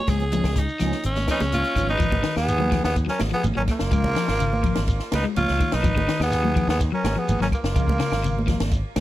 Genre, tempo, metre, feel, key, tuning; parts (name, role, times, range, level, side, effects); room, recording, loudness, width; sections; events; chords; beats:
afrobeat; 125 BPM; 4/4; straight; G# dorian; A4 = 439 Hz
raspy alto saxophone; melody; 0.0-2.0 s; C#4 to C#5; -28 LUFS; equal
electric guitar at the edge of break-up; arpeggios; 0.1-8.6 s; C#3 to G#3; -28 LUFS; left 6 dB; phaser
clean electric guitar; stabs; 0.1-1.9 s; E#3 to G#4; -32 LUFS; right 5 dB; ensemble chorus
modern bright fingered electric bass; bass; 0.1-9.0 s; F#1 to D#2; -25 LUFS; equal
compact cocktail drum kit; drums; 0.1-9.0 s; hi-hat, kick drum, ride cymbal, snare drum; -26 LUFS; equal
claves; percussion; 0.1-9.0 s; -40 LUFS; right 5 dB
congas; percussion; 0.1-9.0 s; -31 LUFS; right 3 dB
shekere; percussion; 0.1-9.0 s; -31 LUFS; left 1 dB
breathy tenor saxophone; melody; 1.3-8.7 s; A#3 to E#4; -26 LUFS; equal; tape echo
mellow trumpet; second line; 1.3-8.7 s; E#4 to C#5; -32 LUFS; right 5 dB; tape echo
light reverb; -20 LUFS; side -14 dB against mid
0.0-2.0 A section; 2.0-9.0 B section
alto saxophone solo 0.0-2.0
0.1 C#7; 2.0 G#m7; 3.9 C#; 5.8 G#m7; 7.8 C#
| 0.09 0.57 1.05 1.53 | 2.01 2.49 2.97 3.45 | 3.93 4.41 4.89 5.37 | 5.85 6.33 6.80 7.28 | 7.76 8.24 8.72